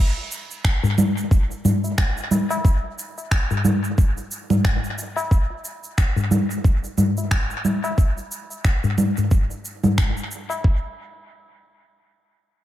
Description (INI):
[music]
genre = downtempo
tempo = 90 BPM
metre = 4/4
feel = swing 57% on 16ths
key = none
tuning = none
[part]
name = tabla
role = percussion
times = 0.2-10.6 s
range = none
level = -25 LUFS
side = left 3 dB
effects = none
[part]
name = electronic shaker, finger snaps and congas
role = drums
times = 0.3-10.6 s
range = none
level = -23 LUFS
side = right 1 dB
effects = overdrive, dub echo
[part]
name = electronic kick drum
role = drums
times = 0.6-10.8 s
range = none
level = -18 LUFS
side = equal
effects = overdrive
[sound]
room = light reverb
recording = echo-heavy mix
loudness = -19 LUFS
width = side -13 dB against mid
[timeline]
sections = 0.0-10.6 A section; 10.6-12.6 B section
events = none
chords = none